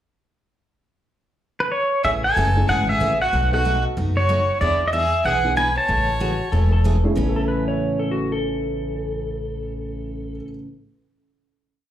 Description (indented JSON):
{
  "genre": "country, western swing",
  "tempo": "188 BPM",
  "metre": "4/4",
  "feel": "swing 63% on 8ths",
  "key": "A major",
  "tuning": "A4 = 442 Hz",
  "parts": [
    { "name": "pedal steel guitar", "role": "melody", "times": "1.6-6.8 s", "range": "B4 to A5", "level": "-20 LUFS", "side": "equal", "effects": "plate reverb, slapback echo" },
    { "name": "clear fiddle", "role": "second line", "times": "2.0-6.8 s", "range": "E4 to C#5", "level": "-30 LUFS", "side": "right 1 dB", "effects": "plate reverb, slapback echo" },
    { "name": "picked steel-string acoustic guitar", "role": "accompaniment", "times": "2.0-10.7 s", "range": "A2 to G#4", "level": "-28 LUFS", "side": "right 2 dB", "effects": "plate reverb, slapback echo" },
    { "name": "upright bass", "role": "bass", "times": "2.0-10.4 s", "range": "E1 to E2", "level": "-23 LUFS", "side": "equal", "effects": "none" },
    { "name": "honky-tonk upright piano", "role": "accompaniment", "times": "2.6-10.6 s", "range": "A2 to A4", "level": "-29 LUFS", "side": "equal", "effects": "plate reverb, slapback echo" },
    { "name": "clean lap steel guitar", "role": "second line", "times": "6.2-10.5 s", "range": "F#4 to C#5", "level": "-28 LUFS", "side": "left 2 dB", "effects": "plate reverb, slapback echo" }
  ],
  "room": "light reverb",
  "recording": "live gig heard through the venue's PA, club reverb",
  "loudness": "-18 LUFS",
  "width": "side -11 dB against mid",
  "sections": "0.8-2.1 pickup bar; 2.1-7.2 A section; 7.2-9.7 final chord",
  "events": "none",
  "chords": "0.8 N.C.; 2.1 Amaj7; 3.3 B7; 4.6 E7; 5.9 Amaj7; 7.2 A"
}